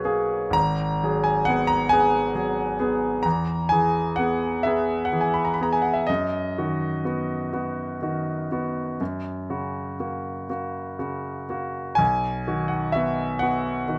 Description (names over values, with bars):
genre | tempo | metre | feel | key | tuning
classical, romantic nocturne for solo piano | 38-46 BPM (dotted quarters) | 12/8 | rubato | B major | A4 = 443 Hz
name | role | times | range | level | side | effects
bright concert grand piano | solo | 0.0-14.0 s | G#1 to B5 | -25 LUFS | equal | none
room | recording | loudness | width
light reverb | none | -25 LUFS | mono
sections
0.0-14.0 A section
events
none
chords
0.0 F#add9/B; 0.6 G#m7; 3.2 Eadd9; 6.1 B/F#; 9.0 F#; 12.0 B